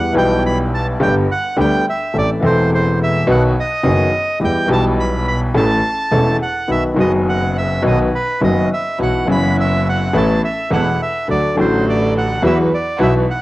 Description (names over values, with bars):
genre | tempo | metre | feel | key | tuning
tango | 105 BPM | 4/4 | rubato | E minor | A4 = 441 Hz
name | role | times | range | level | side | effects
bandoneon | melody | 0.0-13.4 s | B4 to B5 | -20 LUFS | right 2 dB | cassette tape
clear grand piano | accompaniment | 0.0-13.2 s | E1 to A4 | -16 LUFS | left 1 dB | cassette tape
clear double bass | bass | 0.0-13.2 s | E1 to E2 | -21 LUFS | right 1 dB | none
dark chamber string section | stabs | 9.0-13.2 s | B3 to B4 | -25 LUFS | right 3 dB | cassette tape
room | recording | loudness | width
moderate spring reverb, RT60 2.0 s | home recording on cassette | -14 LUFS | side -17 dB against mid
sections
0.0-13.4 A section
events
none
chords
0.0 Em; 1.0 G; 2.1 Am; 3.3 B; 4.4 Em; 5.5 A; 6.7 B; 9.0 Bsus4; 10.1 Asus2; 11.3 D; 12.4 Esus2